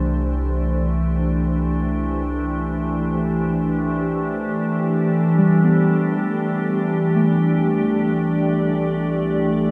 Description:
ambient; free time; C major; A4 = 439 Hz
glassy FM pad; sustained chords; 0.0-9.7 s; E3 to D5; -21 LUFS; equal; ensemble chorus, built-in reverb
deep rumbling drone; bass; 0.0-9.7 s; C2; -29 LUFS; equal; built-in reverb
muted felt-like synth keys; arpeggios; 5.4-9.7 s; G3 to B3; -24 LUFS; equal; chorus, diffuse ambient delay
wet huge ambient reverb, RT60 7.6 s; dark, warm production; -20 LUFS; mono
0.0-5.4 A section; 5.4-9.7 B section
0.0 Am/C; 5.4 Cmaj9

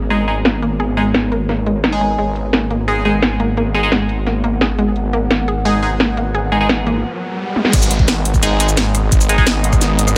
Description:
dark technical drum and bass; 173 BPM; 4/4; straight; G# minor; A4 = 440 Hz
deep dark ambient pad; sustained chords; 0.0-10.2 s; G#3 to F#5; -26 LUFS; equal; chorus, built-in reverb, sidechain pumping
snarling distorted saw bass; bass; 0.0-10.2 s; G#1; -21 LUFS; equal; distortion, tube saturation, sidechain pumping
analog pluck; arpeggios; 0.1-7.0 s; G#3 to G#4; -23 LUFS; equal; chorus, sidechain pumping, dub echo
band-passed chord stab; stabs; 0.1-9.5 s; G#3 to G#4; -23 LUFS; equal; phaser, dub echo
drum and bass drum kit; drums; 0.1-10.1 s; cabasa, crash cymbal, hi-hat, rim click, snare drum, toms; -19 LUFS; equal; low-pass filter on hats, low-pass filter on snare, low-pass filter on toms, low-pass filter on cymbals, low-pass filter on perc, low-pass filter on room
riser; sound effects; 6.4-7.7 s; -29 LUFS; equal
electronic kick drum; drums; 7.7-9.8 s; -16 LUFS; equal
light reverb; -16 LUFS; mono
0.0-7.7 A section; 7.7-10.2 B section
filter sweep on ambient pad 0.0-7.7; riser 6.4-7.7; break 7.0-7.7; drum fill 7.6; drop 7.7-10.2
0.0 G#madd9

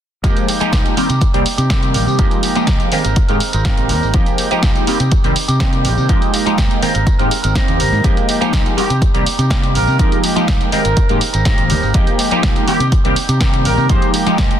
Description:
filtered disco house; 123 BPM; 4/4; straight; F minor; A4 = 443 Hz
funky polysynth comp; accompaniment; 0.2-14.6 s; Eb3 to G4; -18 LUFS; equal; chorus, phaser, sidechain pumping, low-pass filter
electric guitar with an envelope filter; riff; 0.2-14.6 s; G3 to Bb4; -22 LUFS; right 3 dB; sidechain pumping, low-pass filter
fingered electric bass; bass; 0.2-14.5 s; Ab1 to C3; -18 LUFS; equal; sidechain pumping, low-pass filter
electronic kick drum; drums; 0.2-14.5 s; -16 LUFS; equal
punchy analog drum machine; drums; 0.2-14.6 s; hi-hat, snare drum; -22 LUFS; right 1 dB; sidechain pumping on hats
tambourine; percussion; 0.2-14.6 s; -36 LUFS; left 2 dB
warm horn section; melody; 8.8-14.1 s; G4 to C5; -23 LUFS; equal; sidechain pumping, low-pass filter, ping-pong delay
little or no reverb; dense, heavily limited modern master; -12 LUFS; side -10 dB against mid
0.2-14.6 A section
0.2 Fm11; 1.0 Cm7; 2.2 Fm11; 2.9 Abmaj9; 4.1 Fm11; 4.9 Cm7; 6.1 Fm11; 6.8 Abmaj9; 8.0 Fm11; 8.8 Cm7; 10.0 Fm11; 10.7 Abmaj9; 11.9 Fm11; 12.7 Cm7; 13.9 Fm11

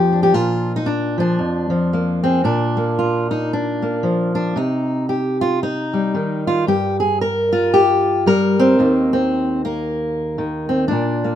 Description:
folk, solo fingerstyle acoustic guitar; 114 BPM; 4/4; swing 60% on 8ths; Eb major; A4 = 440 Hz
fingerpicked steel-string acoustic guitar; solo; 0.0-11.4 s; Eb2 to Bb4; -16 LUFS; equal
moderate small room ambience, RT60 0.5 s; minimal, uncompressed stereo recording; -16 LUFS; side -10 dB against mid
0.0-2.4 A section; 2.4-11.4 B section
0.0 Bb; 4.6 Cm; 6.7 N.C.; 8.8 Eb5

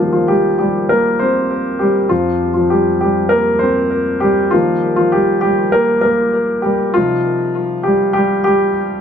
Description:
pop; 99 BPM; 4/4; straight; Eb major; A4 = 441 Hz
warm grand piano; solo; 0.0-9.0 s; F2 to C5; -13 LUFS; equal; ping-pong delay
moderate studio reverb, RT60 0.6 s; -12 LUFS; side -8 dB against mid
0.0-9.0 A section
grand piano solo 0.0-9.0
0.0 Ebadd9; 2.1 Bbsus2/F; 4.5 Ebadd9; 7.0 Cm

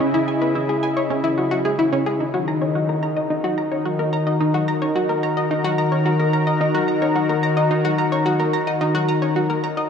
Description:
ambient, sequencer-driven space music; 109 BPM; 4/4; straight; A4 = 438 Hz
lush unison pad; sustained chords; 0.0-9.9 s; C#3 to A#5; -20 LUFS; left 1 dB; chorus
analog pluck; riff; 0.0-9.8 s; C#4 to A#5; -22 LUFS; equal; chorus, tape echo
wet huge ambient reverb, RT60 8.8 s; studio reverb; -18 LUFS; side -7 dB against mid
0.0-9.9 A section
0.0 C#madd9; 2.2 D#m

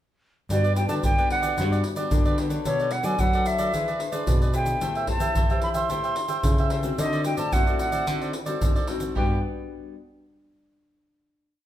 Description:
samba and choro; 111 BPM; 4/4; straight; G major; A4 = 445 Hz
silver concert flute; melody; 0.5-9.4 s; C#5 to C6; -27 LUFS; equal
cavaquinho; accompaniment; 0.5-9.4 s; D4 to G5; -31 LUFS; right 2 dB
nylon-string guitar; accompaniment; 0.5-9.9 s; B2 to C#5; -32 LUFS; left 5 dB
nylon-string guitar; bass; 0.5-9.4 s; G2 to F#3; -29 LUFS; equal
egg shaker, surdo and pandeiro; percussion; 0.5-9.3 s; -26 LUFS; equal
wet large studio reverb, RT60 1.2 s; minimal, uncompressed stereo recording; -22 LUFS; side -12 dB against mid
0.5-9.2 A section; 9.2-11.3 final chord
0.5 Gmaj7; 2.7 Bm9; 3.7 E7b13; 4.8 Am7; 7.0 D7b9; 9.2 Gmaj7

